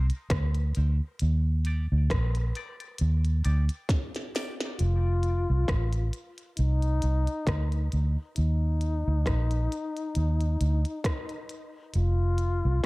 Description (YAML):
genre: dub reggae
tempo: 67 BPM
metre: 4/4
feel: swing 56% on 16ths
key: unclear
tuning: A4 = 440 Hz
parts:
  - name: percussive organ stab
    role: stabs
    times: 0.0-4.6 s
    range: Eb4 to D5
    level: -46 LUFS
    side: left 2 dB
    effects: chorus, phaser, high-pass filter, dub echo
  - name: vintage muted fingered electric bass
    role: bass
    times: 0.0-12.8 s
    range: F1 to Eb2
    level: -24 LUFS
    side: equal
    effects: none
  - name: glitchy drum kit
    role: drums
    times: 0.1-12.9 s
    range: hi-hat, kick drum, rim click, snare drum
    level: -31 LUFS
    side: equal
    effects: none
  - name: clear trombone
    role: second line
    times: 4.8-12.9 s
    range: Eb4 to F4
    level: -34 LUFS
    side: left 3 dB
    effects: high-pass filter, dub echo
room: digital ambience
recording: dark, warm production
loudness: -25 LUFS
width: side -23 dB against mid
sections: 0.0-4.8 A section; 4.8-12.9 B section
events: drum fill 3.9-4.8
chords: 0.0 Cm7; 1.2 Ebmaj7; 4.8 F; 6.6 Cm; 8.4 Eb5; 11.9 F5